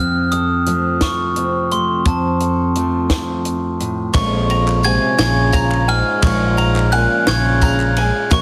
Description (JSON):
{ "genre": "indie folk with a building arrangement", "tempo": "58 BPM (dotted quarters)", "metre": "6/8", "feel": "straight", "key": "Bb minor", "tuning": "A4 = 440 Hz", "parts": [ { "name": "glockenspiel with hard plastic mallets", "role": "melody", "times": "0.0-8.4 s", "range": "A5 to Ab6", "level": "-22 LUFS", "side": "equal", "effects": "none" }, { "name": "fingerpicked steel-string acoustic guitar", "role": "accompaniment", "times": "0.0-4.2 s", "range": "F2 to A4", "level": "-23 LUFS", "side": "equal", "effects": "none" }, { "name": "fingered electric bass", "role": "bass", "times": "0.0-8.4 s", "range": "Bb1 to F2", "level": "-22 LUFS", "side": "equal", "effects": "none" }, { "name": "compact cocktail drum kit", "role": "drums", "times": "0.3-8.4 s", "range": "hi-hat, kick drum, ride cymbal, snare drum", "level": "-23 LUFS", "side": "equal", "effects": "none" }, { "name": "warm French horn", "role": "second line", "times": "4.1-8.4 s", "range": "F2 to Db3", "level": "-25 LUFS", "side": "equal", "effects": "none" }, { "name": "felt-muted upright piano", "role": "accompaniment", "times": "4.1-8.4 s", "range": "Bb1 to Db5", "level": "-31 LUFS", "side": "equal", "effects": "none" }, { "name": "picked twelve-string acoustic guitar", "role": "accompaniment", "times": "4.1-8.4 s", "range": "Bb2 to Gb4", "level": "-26 LUFS", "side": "equal", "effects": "none" }, { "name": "mandolin", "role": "arpeggios", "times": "4.1-8.4 s", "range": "Ab5 to Db6", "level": "-26 LUFS", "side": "equal", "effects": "none" }, { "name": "group handclap", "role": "percussion", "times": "4.1-8.4 s", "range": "none", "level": "-33 LUFS", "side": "equal", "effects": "none" }, { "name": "tambourine", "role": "percussion", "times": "4.1-8.4 s", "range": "none", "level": "-38 LUFS", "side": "equal", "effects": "none" } ], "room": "light reverb", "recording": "heavily compressed radio sound", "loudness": "-17 LUFS", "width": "mono", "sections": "0.0-4.1 A section; 4.1-8.4 B section", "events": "none", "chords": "0.0 F; 4.1 Bbm7" }